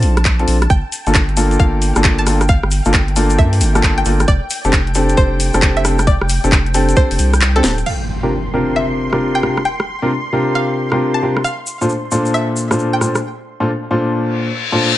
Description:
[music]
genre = UK garage, two-step garage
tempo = 134 BPM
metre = 4/4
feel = swing 64% on 16ths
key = unclear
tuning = A4 = 441 Hz
[part]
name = soft string machine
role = sustained chords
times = 0.0-13.2 s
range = G5 to C6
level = -28 LUFS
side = equal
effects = ensemble chorus, sidechain pumping
[part]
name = warm grand piano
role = stabs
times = 0.0-14.9 s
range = Bb2 to C5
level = -17 LUFS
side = left 1 dB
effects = low-pass filter
[part]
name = saturated sub bass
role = bass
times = 0.0-7.8 s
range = D1 to G2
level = -16 LUFS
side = equal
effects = none
[part]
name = garage drum kit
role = drums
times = 0.0-13.2 s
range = crash cymbal, handclaps, hi-hat, rim click, snare drum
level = -19 LUFS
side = equal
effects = none
[part]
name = electronic kick drum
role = drums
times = 0.3-7.1 s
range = none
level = -14 LUFS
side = equal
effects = none
[part]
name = string-like resonator pluck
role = melody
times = 0.7-13.1 s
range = A4 to A5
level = -21 LUFS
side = right 1 dB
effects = chorus, cassette tape, digital delay
[part]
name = egg shaker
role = percussion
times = 0.7-7.8, 11.4-13.2 s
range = none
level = -27 LUFS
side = left 2 dB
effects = none
[part]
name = impact and reverse cymbal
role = sound effects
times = 7.9-9.7, 14.3-15.0 s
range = none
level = -21 LUFS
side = left 2 dB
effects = none
[sound]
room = light reverb, digital ambience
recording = nothing above 11.0 kHz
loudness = -13 LUFS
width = side -14 dB against mid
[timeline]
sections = 0.0-7.9 A section; 7.9-15.0 B section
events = kick drops out 7.4-7.9; drum fill 7.6; impact 7.9-9.7; reverse cymbal 14.3-15.0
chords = 0.0 Bbmaj9; 0.7 Gm9; 4.3 F69; 7.9 C7sus4; 11.4 Bbmaj9

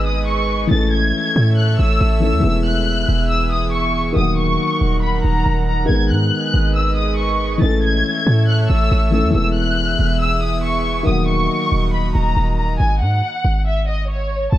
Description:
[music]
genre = hip hop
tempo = 139 BPM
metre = 4/4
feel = half-time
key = G# minor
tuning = A4 = 440 Hz
[part]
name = warm studio violin section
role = melody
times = 0.0-14.6 s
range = C#5 to A6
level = -21 LUFS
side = left 1 dB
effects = low-pass filter
[part]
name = dark concert grand piano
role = accompaniment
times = 0.0-12.8 s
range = D#3 to A4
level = -22 LUFS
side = left 2 dB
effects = low-pass filter
[part]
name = airy breathy pad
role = sustained chords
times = 0.0-12.8 s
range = D#3 to F#5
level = -25 LUFS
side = right 2 dB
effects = chorus
[part]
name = hard-hitting 808-style bass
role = bass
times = 0.0-14.6 s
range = D#1 to A2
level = -18 LUFS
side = equal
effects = none
[sound]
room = studio reverb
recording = none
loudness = -15 LUFS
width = side -14 dB against mid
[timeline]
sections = 0.0-12.8 A section; 12.8-14.6 B section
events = none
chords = 0.0 G#m; 0.7 A; 2.4 E; 4.2 D#m; 5.9 G#m; 7.6 A; 9.3 E; 11.1 D#m; 12.8 G#7sus4

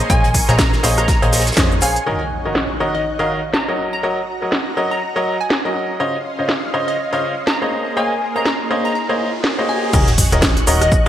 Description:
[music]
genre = piano house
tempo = 122 BPM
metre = 4/4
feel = swing 58% on 16ths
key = unclear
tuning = A4 = 440 Hz
[part]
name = analog string pad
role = sustained chords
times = 0.0-11.1 s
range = Bb3 to Gb6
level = -27 LUFS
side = right 1 dB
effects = ensemble chorus, sidechain pumping
[part]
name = bright upright piano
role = riff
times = 0.0-11.1 s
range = Db3 to F5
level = -20 LUFS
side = equal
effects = sidechain pumping, digital delay
[part]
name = plucky analog bass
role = bass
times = 0.0-2.0, 9.9-11.1 s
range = Eb1 to F2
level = -19 LUFS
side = equal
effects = sidechain pumping
[part]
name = garage drum kit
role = drums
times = 0.0-11.1 s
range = cabasa, crash cymbal, hi-hat, rim click, snare drum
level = -20 LUFS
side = equal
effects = low-pass filter on hats, low-pass filter on perc, low-pass filter on snare, low-pass filter on cymbals, low-pass filter on room, gated reverb
[part]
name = glassy wavetable pluck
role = melody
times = 0.1-11.1 s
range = Eb5 to Bb5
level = -23 LUFS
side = equal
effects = chorus, digital delay
[part]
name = electronic kick drum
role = drums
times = 0.1-1.7, 9.9-11.0 s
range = none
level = -16 LUFS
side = equal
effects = none
[part]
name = warm soul drum kit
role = drums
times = 0.1-11.1 s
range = hi-hat, shaker, snare drum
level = -29 LUFS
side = right 1 dB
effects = none
[part]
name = impact, riser and sub drop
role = sound effects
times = 2.1-11.1 s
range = none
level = -27 LUFS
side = equal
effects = none
[sound]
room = moderate plate reverb, RT60 2.3 s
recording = bright 1980s-style digital production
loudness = -15 LUFS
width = side -11 dB against mid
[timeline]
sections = 0.0-2.1 A section; 2.1-9.9 B section; 9.9-11.1 C section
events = impact 2.1-4.0, 9.9-11.1; riser 7.7-9.9; drop 9.9-11.1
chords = 0.0 Bbm11; 2.1 Ebm7; 3.8 Gb6; 6.0 Dbmaj9; 7.7 Bbm11; 9.9 Ebm7

